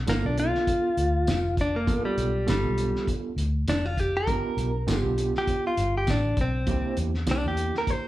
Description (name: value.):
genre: straight-eighth soul blues.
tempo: 100 BPM.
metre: 4/4.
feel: swing 55% on 16ths.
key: G mixolydian.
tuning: A4 = 439 Hz.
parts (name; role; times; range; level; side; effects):
vintage muted fingered electric bass; bass; 0.0-7.7 s; F1 to E2; -28 LUFS; equal; none.
direct-recorded clean electric guitar; melody; 0.1-8.1 s; G3 to C5; -27 LUFS; equal; none.
overdriven tine electric piano; accompaniment; 0.1-8.1 s; Bb3 to A4; -33 LUFS; right 5 dB; medium tremolo.
cloth-damped thuddy drum kit; drums; 0.1-8.0 s; hi-hat, kick drum, snare drum, tambourine; -30 LUFS; equal; none.
room: moderate large studio reverb, RT60 0.8 s.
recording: band playing live in one room.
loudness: -23 LUFS.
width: side -15 dB against mid.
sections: 0.0-8.1 A section.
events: clean electric guitar solo 0.0-8.1.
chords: 0.0 G9; 6.7 C9.